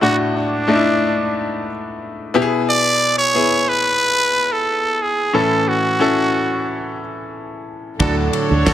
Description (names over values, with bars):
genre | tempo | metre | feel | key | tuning
piano-driven pop | 90 BPM | 4/4 | straight | E mixolydian | A4 = 441 Hz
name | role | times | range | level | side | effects
growling trumpet | melody | 0.0-8.7 s | D4 to D5 | -18 LUFS | right 2 dB | none
bright grand piano | accompaniment | 0.0-8.7 s | A2 to A4 | -19 LUFS | left 3 dB | none
warm studio string section | sustained chords | 8.0-8.7 s | F#3 to A4 | -26 LUFS | left 1 dB | none
picked steel-string acoustic guitar | riff | 8.0-8.7 s | D3 to A4 | -21 LUFS | right 6 dB | none
vintage muted fingered electric bass | bass | 8.0-8.7 s | D2 | -19 LUFS | right 1 dB | none
damped 70s drum kit | drums | 8.0-8.7 s | kick drum, ride cymbal, snare drum | -21 LUFS | right 1 dB | none
room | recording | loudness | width
light reverb, small room ambience | none | -15 LUFS | side -11 dB against mid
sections
0.0-8.7 A section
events
none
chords
0.0 D; 2.4 E; 5.3 A; 8.0 D